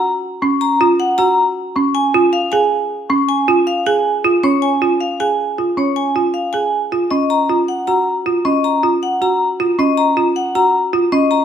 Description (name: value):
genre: classical, minimalist pattern music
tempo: 314 BPM (eighths)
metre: 7/8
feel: straight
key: Eb minor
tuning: A4 = 441 Hz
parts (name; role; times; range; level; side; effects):
- vibraphone with hard mallets; melody; 0.0-11.4 s; Db5 to Bb5; -17 LUFS; left 1 dB; none
- folk marimba with hard mallets; arpeggios; 0.0-11.4 s; Db4 to Ab4; -16 LUFS; right 3 dB; none
- celesta; arpeggios; 0.4-11.4 s; Db6; -22 LUFS; left 8 dB; none
room: moderate large studio reverb, RT60 1.4 s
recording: none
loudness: -13 LUFS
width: side -8 dB against mid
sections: 0.0-11.4 A section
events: none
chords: 0.0 Gbmaj7; 1.4 Db; 6.7 Ebm7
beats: | 0.04 0.23 0.42 0.61 0.81 1.00 1.19 | 1.38 1.57 1.76 1.95 2.14 2.33 2.52 | 2.72 2.91 3.10 3.29 3.48 3.67 3.86 | 4.05 4.24 4.43 4.63 4.82 5.01 5.20 | 5.39 5.58 5.77 5.96 6.16 6.35 6.54 | 6.73 6.92 7.11 7.30 7.49 7.68 7.88 | 8.07 8.26 8.45 8.64 8.83 9.02 9.21 | 9.40 9.60 9.79 9.98 10.17 10.36 10.55 | 10.74 10.93 11.12 11.31